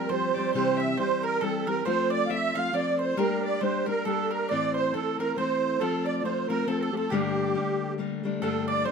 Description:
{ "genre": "celtic folk, Celtic waltz", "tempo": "137 BPM", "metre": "3/4", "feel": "swing 57% on 8ths", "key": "G dorian", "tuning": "A4 = 441 Hz", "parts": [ { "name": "musette accordion", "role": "melody", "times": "0.0-8.9 s", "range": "G4 to F5", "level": "-28 LUFS", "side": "right 6 dB", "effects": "none" }, { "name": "mandolin", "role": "second line", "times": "0.0-8.9 s", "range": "G4 to F5", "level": "-34 LUFS", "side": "right 4 dB", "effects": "none" }, { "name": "warm fiddle", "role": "second line", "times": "0.0-8.9 s", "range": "G4 to F5", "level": "-36 LUFS", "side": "left 5 dB", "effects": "none" }, { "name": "fingerpicked steel-string acoustic guitar", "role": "accompaniment", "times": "0.0-8.9 s", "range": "G2 to G4", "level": "-28 LUFS", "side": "left 3 dB", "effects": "none" } ], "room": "moderate studio reverb, RT60 0.5 s", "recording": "none", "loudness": "-24 LUFS", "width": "side -6 dB against mid", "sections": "0.0-8.4 A section", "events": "none", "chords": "0.0 Fsus2; 0.5 C; 1.9 F; 3.2 Gm; 4.5 Am; 5.8 F; 7.1 Gmadd9" }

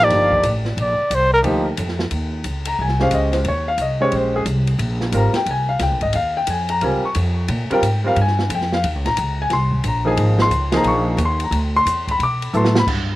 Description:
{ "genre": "modal jazz", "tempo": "178 BPM", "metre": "4/4", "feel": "swing 65% on 8ths", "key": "Eb mixolydian", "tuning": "A4 = 440 Hz", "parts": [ { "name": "mellow trumpet", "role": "melody", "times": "0.0-1.4 s", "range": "Bb4 to D5", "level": "-16 LUFS", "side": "equal", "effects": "slapback echo" }, { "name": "warm concert grand piano", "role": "accompaniment", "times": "0.0-12.9 s", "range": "F3 to D6", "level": "-19 LUFS", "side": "left 1 dB", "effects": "slapback echo" }, { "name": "upright bass", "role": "bass", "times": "0.0-13.2 s", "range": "G1 to B2", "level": "-21 LUFS", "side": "equal", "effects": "none" }, { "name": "open jazz drum kit", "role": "drums", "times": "0.1-13.0 s", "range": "crash cymbal, hi-hat, kick drum, ride cymbal, snare drum", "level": "-26 LUFS", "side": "equal", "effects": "none" } ], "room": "little or no reverb", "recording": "recorded outdoors, with no room sound", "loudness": "-16 LUFS", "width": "side -16 dB against mid", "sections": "0.0-2.1 A section; 2.1-12.9 A section", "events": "trumpet solo 0.0-2.1; drum fill 12.5-12.9", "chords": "0.0 Ebmaj9; 2.1 Eb13sus4; 11.5 D13" }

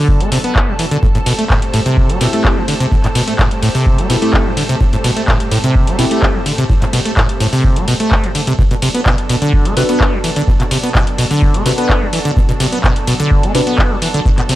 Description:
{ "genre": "acid house", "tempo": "127 BPM", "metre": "4/4", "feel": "straight", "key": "B phrygian", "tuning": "A4 = 439 Hz", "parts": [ { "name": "lush unison pad", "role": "sustained chords", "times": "0.0-14.6 s", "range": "A2 to A4", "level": "-23 LUFS", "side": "right 1 dB", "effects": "chorus, sidechain pumping" }, { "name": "acid bass, saw", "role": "riff", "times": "0.0-14.6 s", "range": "A2 to B3", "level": "-16 LUFS", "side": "equal", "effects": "lush chorus, sidechain pumping, analog delay" }, { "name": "electronic kick drum", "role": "drums", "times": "0.1-14.4 s", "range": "none", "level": "-14 LUFS", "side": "equal", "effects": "none" }, { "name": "booming analog drum machine", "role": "drums", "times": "0.2-14.6 s", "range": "handclaps, hi-hat, ride cymbal", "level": "-20 LUFS", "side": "equal", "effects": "none" }, { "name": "deep mellow chord stab", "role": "stabs", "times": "2.2-6.3, 9.8-13.7 s", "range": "C4 to B4", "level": "-20 LUFS", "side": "left 2 dB", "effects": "chorus, analog delay" } ], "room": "digital ambience", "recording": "dry, gritty hardware recording", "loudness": "-11 LUFS", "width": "side -15 dB against mid", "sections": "0.0-14.6 A section", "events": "none", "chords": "0.0 Bm7; 1.0 Am7; 8.6 Bm7" }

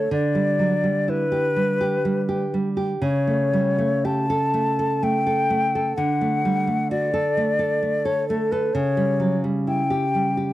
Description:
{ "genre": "romantic duo for flute and classical guitar", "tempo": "56-66 BPM", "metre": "3/4", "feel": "rubato", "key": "D major", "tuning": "A4 = 440 Hz", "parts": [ { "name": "mellow hollow silver concert flute", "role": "melody", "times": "0.0-10.5 s", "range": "A4 to A5", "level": "-23 LUFS", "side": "left 2 dB", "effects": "none" }, { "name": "nylon-string guitar", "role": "accompaniment", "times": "0.0-10.5 s", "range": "C#3 to A4", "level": "-22 LUFS", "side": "right 2 dB", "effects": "none" } ], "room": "little or no reverb", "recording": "dry, close 1970s-style studio recording", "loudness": "-19 LUFS", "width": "side -15 dB against mid", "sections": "0.0-10.5 A section", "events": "none", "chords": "0.1 Em7/D; 3.0 A7/C#; 6.0 D; 8.7 C#dim" }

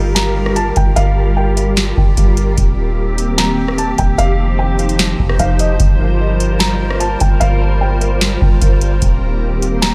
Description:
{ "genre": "hip hop, atmospheric cloud-rap", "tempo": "149 BPM", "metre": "4/4", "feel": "half-time", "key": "G minor", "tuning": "A4 = 440 Hz", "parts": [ { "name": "glassy FM pad", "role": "sustained chords", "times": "0.0-9.9 s", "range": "Eb3 to C5", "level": "-22 LUFS", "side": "equal", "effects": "ensemble chorus, built-in reverb, sidechain pumping" }, { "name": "soft 808-style bass", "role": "bass", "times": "0.0-9.9 s", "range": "Eb1 to G1", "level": "-18 LUFS", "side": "equal", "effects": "none" }, { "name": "felt-muted upright piano", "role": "melody", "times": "0.1-9.9 s", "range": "Eb5 to Bb5", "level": "-24 LUFS", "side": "equal", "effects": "tape echo" }, { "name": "booming analog drum machine", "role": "drums", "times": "0.2-9.9 s", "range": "hi-hat, kick drum, rim click, snare drum", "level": "-18 LUFS", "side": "equal", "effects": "none" }, { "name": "backwards swelling texture", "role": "texture", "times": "7.0-9.9 s", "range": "G3 to C5", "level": "-34 LUFS", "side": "equal", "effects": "none" } ], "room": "digital ambience", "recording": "none", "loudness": "-14 LUFS", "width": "mono", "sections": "0.0-9.9 A section", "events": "none", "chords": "0.0 Gm7; 2.6 Eb6; 4.2 Fsus2; 5.8 Gm7; 9.0 Eb6" }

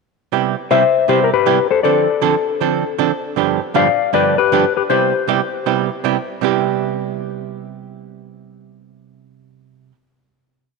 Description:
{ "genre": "country", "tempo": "157 BPM", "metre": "4/4", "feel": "swing 64% on 8ths", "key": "C major", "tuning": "A4 = 439 Hz", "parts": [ { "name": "archtop guitar, miked and amplified", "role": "accompaniment", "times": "0.3-9.9 s", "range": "G2 to A4", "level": "-18 LUFS", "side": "right 12 dB", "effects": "none" }, { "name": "clean lap steel guitar", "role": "melody", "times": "0.7-6.0 s", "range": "G4 to F5", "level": "-16 LUFS", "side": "left 9 dB", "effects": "tape echo" } ], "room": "wet plate reverb, RT60 3.1 s", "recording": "1960s-style stereo with parts hard left and right", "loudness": "-14 LUFS", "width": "side -3 dB against mid", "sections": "0.3-6.4 A section; 6.4-9.5 final chord", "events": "none", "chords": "0.3 Cmaj7; 1.8 Dm7; 3.4 G7; 4.9 Cmaj7" }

